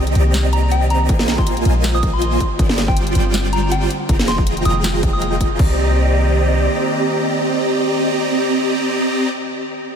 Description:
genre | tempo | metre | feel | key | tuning
future bass | 160 BPM | 4/4 | swing 55% on 16ths, half-time | C minor | A4 = 440 Hz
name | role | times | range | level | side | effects
airy breathy pad | sustained chords | 0.0-9.3 s | D3 to G5 | -26 LUFS | equal | chorus, sidechain pumping
supersaw chords | riff | 0.0-9.3 s | F3 to Bb5 | -19 LUFS | right 1 dB | phaser, sidechain pumping, ping-pong delay
warm 808-style bass | bass | 0.0-6.7 s | F1 to C2 | -18 LUFS | equal | sidechain pumping
trap drum kit | drums | 0.1-5.7 s | crash cymbal, hi-hat, snare drum | -25 LUFS | equal | none
soft struck synth lead | melody | 0.5-5.3 s | G5 to Eb6 | -26 LUFS | left 1 dB | chorus, vintage 12-bit sampler grit, sidechain pumping, diffuse ambient delay
electronic kick drum | drums | 1.1-5.7 s | none | -17 LUFS | equal | none
room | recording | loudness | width
moderate huge ambient reverb, RT60 7.9 s | dreamy mix soaked in reverb | -14 LUFS | side -7 dB against mid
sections
0.0-5.6 A section; 5.6-8.6 B section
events
drop 0.0-5.6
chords
0.0 Cm7; 1.1 Bb7sus4; 2.4 G7sus4; 3.9 Fm11; 5.6 Cm7

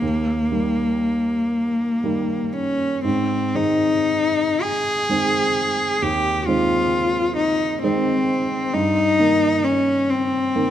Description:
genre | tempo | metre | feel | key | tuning
classical, romantic duo for cello and grand piano | 37-45 BPM (dotted quarters) | 12/8 | rubato | Ab major | A4 = 440 Hz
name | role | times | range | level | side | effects
rich cello | melody | 0.0-10.7 s | Bb3 to Ab4 | -19 LUFS | left 2 dB | none
warm grand piano | accompaniment | 0.0-10.7 s | Eb2 to C4 | -24 LUFS | right 3 dB | none
room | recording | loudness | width
moderate concert hall reverb, RT60 1.9 s | none | -18 LUFS | side -10 dB against mid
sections
0.0-10.7 A section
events
none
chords
0.0 Eb; 3.0 Ab; 8.7 Eb/G

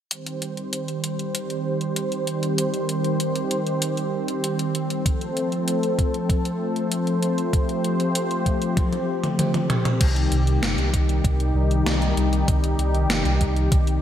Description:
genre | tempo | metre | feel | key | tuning
synthwave | 97 BPM | 4/4 | straight | C dorian | A4 = 440 Hz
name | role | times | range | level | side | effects
warm analog pad | sustained chords | 0.1-14.0 s | C3 to C5 | -23 LUFS | equal | chorus, sidechain pumping
gated 80s digital drum machine | drums | 0.1-14.0 s | crash cymbal, hi-hat, snare drum, toms | -27 LUFS | equal | gated reverb, gated reverb snare
electronic kick drum | drums | 5.1-13.8 s | none | -22 LUFS | equal | none
dark detuned saw bass | bass | 10.0-14.0 s | G1 to C2 | -22 LUFS | equal | none
room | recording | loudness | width
moderate lush hall reverb, RT60 2.9 s | dreamy mix soaked in reverb | -20 LUFS | side -10 dB against mid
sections
0.1-10.0 A section; 10.0-14.0 B section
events
drum fill 8.8-10.0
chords
0.1 Cm; 5.1 F; 10.0 Cm

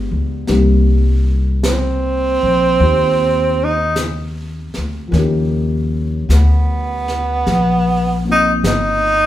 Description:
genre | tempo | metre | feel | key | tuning
jazz ballad | 52 BPM | 4/4 | swing 68% on 8ths | unclear | A4 = 440 Hz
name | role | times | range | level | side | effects
dark grand piano | accompaniment | 0.0-9.3 s | F3 to Bb4 | -23 LUFS | left 2 dB | none
upright bass | bass | 0.0-9.3 s | G1 to Eb2 | -16 LUFS | left 1 dB | none
jazz brush drum kit | drums | 0.5-9.3 s | brushed snare drum, hi-hat, snare drum | -25 LUFS | equal | none
breathy tenor saxophone | melody | 1.7-9.3 s | Cb4 to Eb4 | -15 LUFS | right 2 dB | none
room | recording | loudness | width
moderate large studio reverb, RT60 1.1 s | band playing live in one room | -13 LUFS | side -13 dB against mid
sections
0.0-9.3 A section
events
tenor saxophone solo 0.0-9.3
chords
0.5 Cm7; 5.1 Eb9

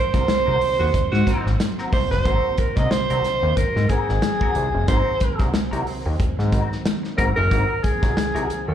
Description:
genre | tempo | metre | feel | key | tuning
funk | 91 BPM | 4/4 | swing 56% on 16ths | unclear | A4 = 440 Hz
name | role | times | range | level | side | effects
breathy alto saxophone | melody | 0.0-8.7 s | Ab4 to Eb5 | -23 LUFS | right 1 dB | slapback echo, tape echo
string machine, full ensemble | sustained chords | 0.0-8.7 s | Eb3 to C4 | -30 LUFS | right 1 dB | ensemble chorus
semi-hollow electric guitar | accompaniment | 0.1-8.7 s | C4 to Bb4 | -32 LUFS | left 3 dB | wah, slapback echo
fat analog bass | bass | 0.1-8.7 s | Gb1 to Ab2 | -21 LUFS | equal | none
warm soul drum kit | drums | 0.1-8.7 s | hi-hat, kick drum, snare drum | -23 LUFS | equal | none
raspy tenor saxophone | second line | 0.8-1.5 s | Gb4 | -29 LUFS | right 3 dB | slapback echo
room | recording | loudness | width
little or no reverb | live gig heard through the venue's PA, club reverb | -18 LUFS | side -10 dB against mid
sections
0.0-8.7 A section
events
band accent 0.0-2.3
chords
0.0 Ab9

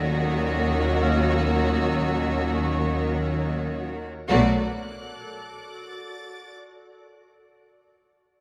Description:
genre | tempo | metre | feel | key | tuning
cinematic, suspense film score | free time | none | none | unclear | A4 = 436 Hz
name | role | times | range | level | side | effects
rich chamber violin section | melody | 0.0-4.7 s | C#5 to D5 | -37 LUFS | equal | none
rich chamber violin section | second line | 0.0-4.7 s | F#4 | -33 LUFS | equal | none
rich studio viola section | accompaniment | 0.0-4.7 s | A3 to A#3 | -33 LUFS | equal | none
backwards swelling texture | sustained chords | 0.0-4.7 s | F#4 to C#5 | -40 LUFS | equal | built-in reverb
mellow French horn section | sustained chords | 0.0-4.6 s | A3 to D4 | -35 LUFS | equal | none
warm trombone section | sustained chords | 0.0-4.6 s | A#2 to F#3 | -36 LUFS | equal | none
clear chamber double bass section | bass | 0.0-4.7 s | B1 to D#2 | -29 LUFS | equal | none
clear symphonic cello section | bass | 0.0-4.7 s | B2 to D#3 | -30 LUFS | equal | none
concert harp | texture | 0.0-4.3 s | E#5 to E#6 | -38 LUFS | equal | none
rich chamber violin section | texture | 0.0-6.6 s | D6 to A#6 | -40 LUFS | equal | none
room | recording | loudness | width
moderate scoring stage reverb, RT60 1.9 s | none | -24 LUFS | mono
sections
0.0-4.3 A section; 4.3-6.9 B section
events
none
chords
0.0 D#m7; 4.3 Bm7

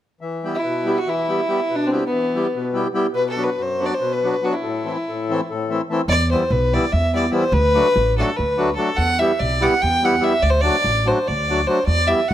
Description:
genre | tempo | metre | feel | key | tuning
balkan folk, Balkan wedding band | 289 BPM (eighths) | 7/8 | straight | E minor | A4 = 441 Hz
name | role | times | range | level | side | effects
accordion | accompaniment | 0.2-12.2 s | F#2 to G4 | -22 LUFS | left 1 dB | none
rich fiddle | melody | 0.5-12.3 s | B3 to G5 | -20 LUFS | equal | none
upright bass | bass | 6.1-12.3 s | A1 to E2 | -21 LUFS | right 1 dB | none
room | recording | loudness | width
light reverb | close, detailed microphones | -17 LUFS | side -12 dB against mid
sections
0.2-6.1 A section; 6.1-12.3 B section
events
none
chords
0.2 Em; 3.2 Bm; 4.6 Am; 6.1 Em; 7.5 D; 9.0 Em; 10.4 D

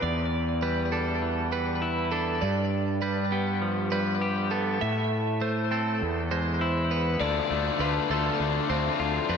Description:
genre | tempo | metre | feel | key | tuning
post-rock | 100 BPM | 4/4 | straight | unclear | A4 = 440 Hz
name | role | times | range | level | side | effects
semi-hollow electric guitar | arpeggios | 0.0-9.4 s | E2 to G4 | -30 LUFS | left 3 dB | spring reverb, ping-pong delay
twelve-string electric guitar | arpeggios | 0.0-9.4 s | G4 to E5 | -31 LUFS | right 4 dB | ping-pong delay
fuzz fingered electric bass | bass | 0.0-9.4 s | D2 to A2 | -29 LUFS | right 1 dB | overdrive
raw garage guitar | riff | 7.2-9.4 s | D3 to F4 | -27 LUFS | left 10 dB | overdrive, wide subtle chorus
room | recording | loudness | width
moderate lush hall reverb, RT60 2.9 s | dreamy mix soaked in reverb | -24 LUFS | side -6 dB against mid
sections
0.0-7.2 A section; 7.2-9.4 B section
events
build-up 7.2-9.4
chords
0.0 Em7; 2.4 G7; 4.8 Am; 6.0 E; 7.2 Dm7

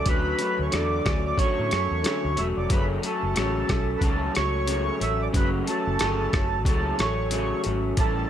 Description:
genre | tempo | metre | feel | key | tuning
indie pop, bedroom pop | 91 BPM | 4/4 | swing 60% on 16ths | unclear | A4 = 440 Hz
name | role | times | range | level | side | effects
mellow accordion | melody | 0.0-8.3 s | A4 to E5 | -28 LUFS | right 3 dB | wide subtle chorus, slapback echo
electric guitar through a small old amp | accompaniment | 0.0-8.3 s | F#2 to E4 | -27 LUFS | left 1 dB | analog chorus, vibrato effect
vintage muted fingered electric bass | bass | 0.1-8.2 s | E1 to A2 | -29 LUFS | equal | none
boom bap sampler-style drum kit | drums | 0.1-8.2 s | hi-hat, kick drum, rim click | -26 LUFS | equal | none
room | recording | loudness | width
digital ambience | none | -22 LUFS | side -10 dB against mid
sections
0.0-8.3 A section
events
none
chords
0.0 Dmaj7; 2.7 F#m

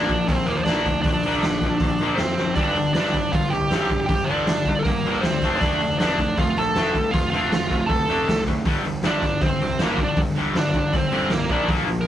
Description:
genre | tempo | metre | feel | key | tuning
punk rock | 158 BPM | 4/4 | straight | G minor | A4 = 442 Hz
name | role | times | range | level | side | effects
smooth overdriven lead guitar | melody | 0.0-12.1 s | Bb3 to A5 | -23 LUFS | right 2 dB | none
distorted electric guitar | riff | 0.0-12.1 s | G2 to D4 | -25 LUFS | left 4 dB | distortion
fuzz picked electric bass | bass | 0.0-12.1 s | F1 to F2 | -29 LUFS | equal | overdrive
raw garage drum kit | drums | 0.1-12.0 s | hi-hat, kick drum, snare drum | -24 LUFS | equal | none
distorted electric guitar | riff | 2.6-12.0 s | G2 to D4 | -32 LUFS | right 6 dB | none
room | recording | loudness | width
light reverb | rough rehearsal-room recording | -19 LUFS | side -11 dB against mid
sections
0.0-12.1 A section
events
drum fill 2.4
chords
0.0 Bb; 2.6 Gm; 5.4 Dm/F; 8.7 Gm; 11.5 Bb

